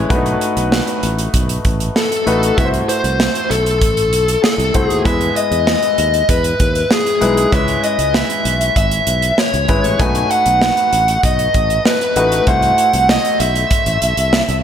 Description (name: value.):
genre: 1980s-style pop.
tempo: 97 BPM.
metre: 4/4.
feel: straight.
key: unclear.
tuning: A4 = 440 Hz.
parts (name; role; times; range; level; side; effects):
clear grand piano; accompaniment; 0.0-14.6 s; G#3 to C5; -21 LUFS; left 2 dB; slapback echo.
fretless electric bass; bass; 0.0-14.6 s; G#1 to E2; -20 LUFS; equal; none.
modern studio drum kit; drums; 0.1-14.6 s; hi-hat, kick drum, snare drum; -18 LUFS; right 1 dB; none.
smooth overdriven lead guitar; melody; 2.0-14.6 s; G#4 to G#5; -16 LUFS; left 1 dB; tape echo.
room: moderate scoring stage reverb, RT60 2.0 s, small room ambience.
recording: big arena sound.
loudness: -12 LUFS.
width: side -9 dB against mid.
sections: 0.0-14.6 A section.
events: none.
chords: 0.1 B7; 2.6 Am6; 5.1 Emaj7; 7.5 C#m7; 10.0 B7; 12.5 Am6.